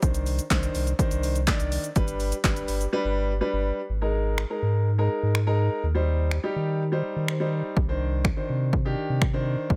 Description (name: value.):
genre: dance-pop.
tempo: 124 BPM.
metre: 4/4.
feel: straight.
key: C minor.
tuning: A4 = 440 Hz.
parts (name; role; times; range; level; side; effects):
warm concert grand piano; accompaniment; 0.0-9.7 s; Eb3 to D5; -31 LUFS; equal; sidechain pumping.
warm sub bass; bass; 0.0-9.8 s; G1 to Eb3; -28 LUFS; equal; sidechain pumping.
punchy analog drum machine; drums; 0.0-9.8 s; finger snaps, handclaps, hi-hat, kick drum, shaker, snare drum; -28 LUFS; equal; overdrive.
room: digital ambience.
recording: none.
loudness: -25 LUFS.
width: mono.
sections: 0.0-3.9 A section; 3.9-9.8 B section.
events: drums muted 2.9-3.9; grand piano fill 7.0-7.8.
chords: 0.0 Cmadd9; 2.0 G; 3.9 Absus2; 5.8 Eb6; 7.8 Cmadd9.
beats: | 0.03 0.51 0.99 1.48 | 1.96 2.44 2.93 3.41 | 3.90 4.38 4.86 5.35 | 5.83 6.32 6.80 7.28 | 7.77 8.25 8.73 9.22 | 9.70.